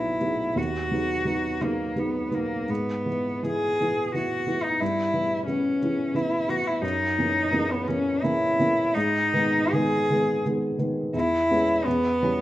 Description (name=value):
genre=classical, romantic duo for cello and grand piano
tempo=74-91 BPM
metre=3/4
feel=rubato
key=B major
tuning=A4 = 441 Hz
part: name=rich cello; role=melody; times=0.0-12.4 s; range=A#3 to G#4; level=-24 LUFS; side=equal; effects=none
part: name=dark baby grand piano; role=accompaniment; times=0.0-12.4 s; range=B1 to E4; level=-26 LUFS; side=equal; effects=none
room=moderate recital hall reverb, RT60 1.5 s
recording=none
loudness=-22 LUFS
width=side -14 dB against mid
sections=0.0-12.4 A section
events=none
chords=0.0 B; 0.6 B/D#; 2.7 E/G#; 4.8 Em/G; 6.8 F#7; 9.0 G#m; 11.1 C#m7/E; 11.9 C#m7b5/E